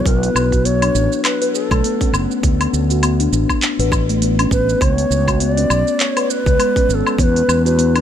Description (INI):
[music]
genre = organic downtempo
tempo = 101 BPM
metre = 4/4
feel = swing 57% on 16ths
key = B dorian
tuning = A4 = 440 Hz
[part]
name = mellow low Native American-style wooden flute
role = melody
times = 0.0-8.0 s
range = A4 to D5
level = -20 LUFS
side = right 1 dB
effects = ping-pong delay
[part]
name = steel tongue drum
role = arpeggios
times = 0.0-8.0 s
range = G#3 to B4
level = -20 LUFS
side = left 4 dB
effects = digital delay
[part]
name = fretless electric bass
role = bass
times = 0.0-8.0 s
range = F#1 to E2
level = -18 LUFS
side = equal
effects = none
[part]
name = electronic kick drum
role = drums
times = 0.1-7.3 s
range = none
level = -18 LUFS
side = right 1 dB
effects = studio reverb
[part]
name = organic electronic drum kit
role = drums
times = 0.1-8.0 s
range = handclaps, hi-hat, shaker, woodblock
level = -22 LUFS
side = equal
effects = studio reverb
[sound]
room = small room ambience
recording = none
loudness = -14 LUFS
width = side -10 dB against mid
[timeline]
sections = 0.1-8.0 A section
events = none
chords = 0.1 B7(no3); 2.4 D5; 4.8 C#5; 7.2 E5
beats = | 0.06 0.65 1.25 1.84 | 2.43 3.03 3.62 4.22 | 4.81 5.40 6.00 6.59 | 7.19 7.78